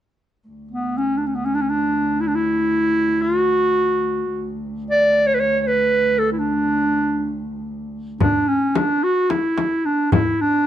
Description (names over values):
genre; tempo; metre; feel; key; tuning
Turkish makam ensemble; free time; none; none; D makam rast; A4 = 438 Hz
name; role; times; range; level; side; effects
muted cello; drone; 0.5-8.3 s; D2; -27 LUFS; equal; none
clear clarinet; melody; 0.7-10.7 s; B3 to D5; -17 LUFS; equal; plate reverb
darbuka; percussion; 8.2-10.3 s; none; -23 LUFS; right 2 dB; none
frame drum; percussion; 8.2-10.3 s; none; -22 LUFS; left 6 dB; none
room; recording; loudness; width
moderate studio reverb, RT60 0.5 s; dark, warm production; -17 LUFS; side -11 dB against mid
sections
0.5-8.2 A section; 8.2-10.7 B section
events
none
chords
none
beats
free time